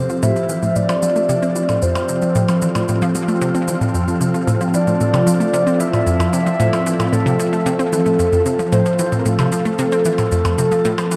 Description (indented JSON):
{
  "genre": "ambient, sequencer-driven space music",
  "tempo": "113 BPM",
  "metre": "4/4",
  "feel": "straight",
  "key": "unclear",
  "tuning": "A4 = 440 Hz",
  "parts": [
    { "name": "soft octave-layered synth lead", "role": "melody", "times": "0.0-11.2 s", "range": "A4 to E5", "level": "-23 LUFS", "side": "equal", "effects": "chorus, phaser, shimmer reverb, delay" },
    { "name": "phased analog pad", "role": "sustained chords", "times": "0.0-11.2 s", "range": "F3 to A4", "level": "-22 LUFS", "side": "equal", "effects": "phaser, chorus, shimmer reverb" },
    { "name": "analog pluck", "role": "riff", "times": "0.0-11.2 s", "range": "F2 to C4", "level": "-22 LUFS", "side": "equal", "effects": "chorus, shimmer reverb, delay" },
    { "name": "wind-like tuned noise texture", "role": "texture", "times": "0.0-11.2 s", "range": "F4", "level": "-32 LUFS", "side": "equal", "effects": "built-in reverb, shimmer reverb" },
    { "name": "cabasa and percussion blips", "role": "percussion", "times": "0.1-11.2 s", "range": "none", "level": "-32 LUFS", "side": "equal", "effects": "overdrive, delay" }
  ],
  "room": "wet huge ambient reverb, RT60 8.6 s",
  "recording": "none",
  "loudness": "-17 LUFS",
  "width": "mono",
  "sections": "0.0-11.2 A section",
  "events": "filter sweep on synth arpeggio sound 0.0-11.2",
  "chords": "0.0 Fmaj7",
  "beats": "0.23 0.76 1.29 | 1.82 2.35 2.88 3.42 | 3.95 4.48 5.01 5.54 | 6.07 6.60 7.13 7.66 | 8.19 8.72 9.26 9.79 | 10.32 10.85"
}